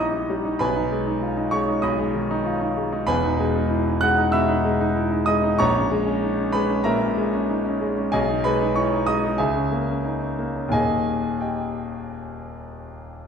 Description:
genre	classical, virtuoso piano study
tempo	95 BPM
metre	4/4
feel	uneven beats, rubato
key	unclear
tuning	A4 = 443 Hz
part	warm concert grand piano	solo	0.0-13.3 s	D#1 to F#6	-20 LUFS	equal	none
room	wet large studio reverb, RT60 1.4 s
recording	heard from further back in the room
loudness	-20 LUFS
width	side -7 dB against mid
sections	0.0-13.3 A section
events	none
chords	0.0 Eb7/Bb; 0.6 Abm/Cb; 3.1 Emaj7; 5.6 A#m7b5; 8.1 G#m/B; 9.4 A#m7b5/C#; 10.7 D#

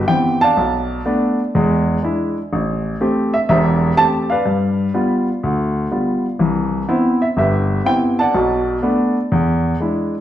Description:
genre	solo jazz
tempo	124 BPM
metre	4/4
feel	swing 66% on 8ths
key	C major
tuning	A4 = 440 Hz
part	warm baby grand piano	solo	0.0-10.1 s	E1 to A5	-15 LUFS	equal	none
room	wet large studio reverb, RT60 1.3 s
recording	band playing live in one room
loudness	-15 LUFS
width	side -12 dB against mid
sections	0.0-10.2 A section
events	none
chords	0.0 Cmaj7; 0.6 Bm7b5; 1.5 E7; 2.5 Am7; 4.4 G7; 6.4 Cmaj7; 8.3 Bm7; 9.3 E7

